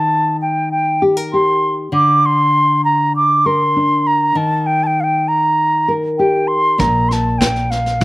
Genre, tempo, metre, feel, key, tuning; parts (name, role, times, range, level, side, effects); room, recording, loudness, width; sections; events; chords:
acoustic folk duo or small band; 99 BPM; 4/4; straight; A4 = 441 Hz
mellow wooden flute; melody; 0.0-8.0 s; F5 to D6; -14 LUFS; right 1 dB; slapback echo
nylon-string guitar; accompaniment; 0.0-8.0 s; Bb2 to Bb4; -18 LUFS; left 2 dB; slapback echo
upright bass; bass; 6.8-8.0 s; Bb1 to Bb2; -20 LUFS; right 1 dB
soft brush drum kit; drums; 6.8-8.0 s; kick drum, snare drum; -19 LUFS; equal
little or no reverb; -13 LUFS; side -18 dB against mid
0.0-8.0 A section
0.0 Eb; 1.9 Bb/D; 4.4 Eb; 6.8 Bb5